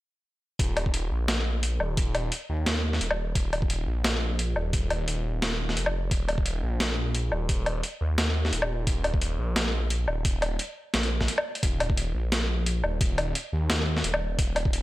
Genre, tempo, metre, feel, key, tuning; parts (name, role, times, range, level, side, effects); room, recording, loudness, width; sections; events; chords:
half-time drum and bass; 174 BPM; 4/4; swing 55% on 16ths, half-time; A4 = 440 Hz
phased detuned saw bass; bass; 0.6-14.8 s; Eb1 to Eb2; -28 LUFS; equal; phaser
boom bap sampler-style drum kit; drums; 0.6-14.8 s; hi-hat, snare drum, woodblock; -28 LUFS; equal
electronic kick drum; drums; 0.6-14.7 s; -27 LUFS; equal
little or no reverb; dry, gritty hardware recording; -24 LUFS; side -17 dB against mid
0.6-14.8 A section
break 11.3-11.6